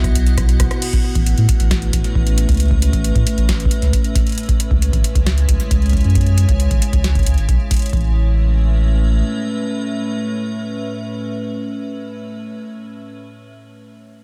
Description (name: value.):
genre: IDM.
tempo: 135 BPM.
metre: 4/4.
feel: straight.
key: A major.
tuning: A4 = 440 Hz.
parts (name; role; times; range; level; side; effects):
icy glass pad; sustained chords; 0.0-12.2 s; A2 to G#5; -27 LUFS; equal; chorus, built-in reverb, vintage 12-bit sampler grit.
warm sub bass; bass; 0.0-9.2 s; G#1 to A2; -18 LUFS; equal; none.
booming analog drum machine; drums; 0.0-8.0 s; crash cymbal, hi-hat, rim click, snare drum; -28 LUFS; equal; overdrive, digital delay.
electronic kick drum; drums; 0.0-8.0 s; none; -20 LUFS; equal; overdrive.
room: little or no reverb.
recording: dense, heavily limited modern master.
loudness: -17 LUFS.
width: mono.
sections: 0.8-7.9 A section; 7.9-11.5 B section.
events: drum fill 0.0-0.8; band accent 0.7.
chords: 0.0 N.C.; 0.8 Aadd9; 4.4 C#m; 7.9 Aadd9.